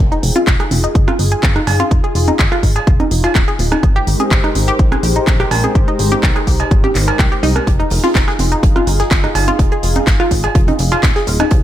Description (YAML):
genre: progressive house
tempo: 125 BPM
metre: 4/4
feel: straight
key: F minor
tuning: A4 = 440 Hz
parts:
  - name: warm analog pad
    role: sustained chords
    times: 0.0-11.6 s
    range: Ab3 to C5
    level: -22 LUFS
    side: equal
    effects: chorus, sidechain pumping
  - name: plucky analog bass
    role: bass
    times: 0.0-11.6 s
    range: Eb1 to C2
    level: -18 LUFS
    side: equal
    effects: sidechain pumping
  - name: analog pluck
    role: arpeggios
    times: 0.1-11.5 s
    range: Eb4 to Bb4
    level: -19 LUFS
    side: left 1 dB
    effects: chorus, cassette tape, sidechain pumping, tape echo
  - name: house drum kit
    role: drums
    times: 0.1-11.6 s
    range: handclaps, hi-hat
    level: -21 LUFS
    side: equal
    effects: sidechain pumping on hats
  - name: electronic congas, rim click and cowbell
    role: percussion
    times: 0.4-11.5 s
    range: none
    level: -22 LUFS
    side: right 5 dB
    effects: sidechain pumping on perc, sidechain pumping on snare
  - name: electronic kick drum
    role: drums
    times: 0.5-11.6 s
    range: none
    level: -14 LUFS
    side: equal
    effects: none
  - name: soft-mallet drum kit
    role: drums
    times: 7.7-11.6 s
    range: hi-hat, snare drum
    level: -31 LUFS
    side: right 4 dB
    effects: high-pass filter on hats, high-pass filter on snare, high-pass filter on room
room: digital ambience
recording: none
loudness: -11 LUFS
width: side -12 dB against mid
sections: 0.0-11.6 A section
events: none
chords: 0.0 Fm7; 3.8 Abmaj9; 7.7 Fm7